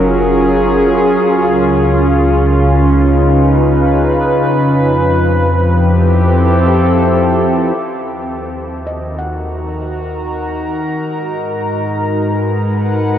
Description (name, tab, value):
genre	ambient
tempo	55 BPM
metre	3/4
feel	straight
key	unclear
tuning	A4 = 440 Hz
part	warbly tape-like pad	sustained chords	0.0-13.2 s	C#3 to A#5	-12 LUFS	equal	chorus, built-in reverb
part	round analog bass	bass	0.0-13.2 s	F#1 to G#2	-17 LUFS	equal	none
part	handpan	arpeggios	8.9-11.9 s	D#5 to F#5	-31 LUFS	left 1 dB	tape echo
room	wet huge ambient reverb, RT60 8.3 s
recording	worn, warbling old tape, cassette tape, warbly pitch drift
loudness	-11 LUFS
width	side -10 dB against mid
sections	0.0-7.8 A section; 7.8-13.2 B section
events	fade-in on ambient pad 7.8-13.2; fade-in on handpan 7.8-13.2; fade-in on analog synth bass 7.8-13.2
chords	0.0 F#maj7; 1.2 C#7; 4.5 Fmaj7; 7.8 D#m; 11.1 G#m7